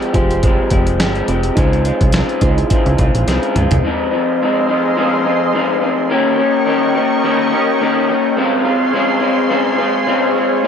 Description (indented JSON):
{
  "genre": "indie pop, bedroom pop",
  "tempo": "106 BPM",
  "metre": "4/4",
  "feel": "swing 55% on 16ths",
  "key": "Ab major",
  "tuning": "A4 = 436 Hz",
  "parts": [
    { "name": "electric guitar through a small old amp", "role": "accompaniment", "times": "0.0-10.7 s", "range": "Ab2 to G4", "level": "-15 LUFS", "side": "left 2 dB", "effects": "lush chorus, vibrato effect" },
    { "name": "soft electric-piano-like synth keys", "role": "accompaniment", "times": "0.0-3.9 s", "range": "Eb4 to C5", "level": "-21 LUFS", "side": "right 2 dB", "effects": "chorus" },
    { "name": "dusty soul sampler-style drum kit", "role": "drums", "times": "0.0-3.8 s", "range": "hi-hat, kick drum, snare drum, toms", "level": "-17 LUFS", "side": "equal", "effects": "none" },
    { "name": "plucky analog bass", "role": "bass", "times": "0.1-3.8 s", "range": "F1 to Db2", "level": "-17 LUFS", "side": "equal", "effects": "none" },
    { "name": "lush unison pad", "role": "sustained chords", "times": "3.8-10.7 s", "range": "Ab4 to Db6", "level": "-19 LUFS", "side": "right 1 dB", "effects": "chorus" }
  ],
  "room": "moderate spring reverb, RT60 2.3 s",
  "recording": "dark, warm production",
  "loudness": "-13 LUFS",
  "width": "side -7 dB against mid",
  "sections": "0.0-3.8 A section; 3.8-10.7 B section",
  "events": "drum fill 3.3-3.8",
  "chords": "0.0 Fmadd9; 1.6 Dbmaj7; 3.8 Ab6; 6.1 Eb7; 8.4 Dbmaj7"
}